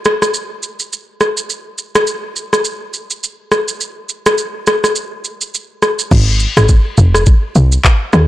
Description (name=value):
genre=afrobeats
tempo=104 BPM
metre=4/4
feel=swing 58% on 16ths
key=unclear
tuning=A4 = 438 Hz
part: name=afro-pop drum kit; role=drums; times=0.1-8.3 s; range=crash cymbal, handclaps, kick drum, rim click, shaker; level=-13 LUFS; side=equal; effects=soft clipping on snare
part: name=woody log drum bass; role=bass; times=6.1-8.3 s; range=F1 to Eb2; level=-10 LUFS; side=equal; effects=none
room=light reverb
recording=blown-out, overdriven recording, overdrive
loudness=-12 LUFS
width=side -15 dB against mid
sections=0.0-6.1 A section; 6.1-8.3 B section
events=none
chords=none